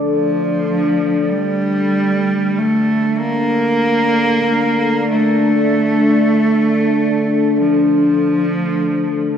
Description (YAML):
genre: dark ambient drone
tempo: free time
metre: none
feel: none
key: D minor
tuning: A4 = 440 Hz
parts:
  - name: warm cello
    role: melody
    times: 0.0-9.4 s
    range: F3 to Bb3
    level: -16 LUFS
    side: right 2 dB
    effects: tape echo
  - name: deep dark ambient pad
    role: sustained chords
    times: 0.0-9.4 s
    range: D4 to A5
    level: -16 LUFS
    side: left 2 dB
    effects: chorus, built-in reverb
room: wet plate reverb, RT60 2.6 s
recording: dreamy mix soaked in reverb, cassette tape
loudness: -13 LUFS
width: side -8 dB against mid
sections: 0.0-9.4 A section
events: none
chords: 0.0 D5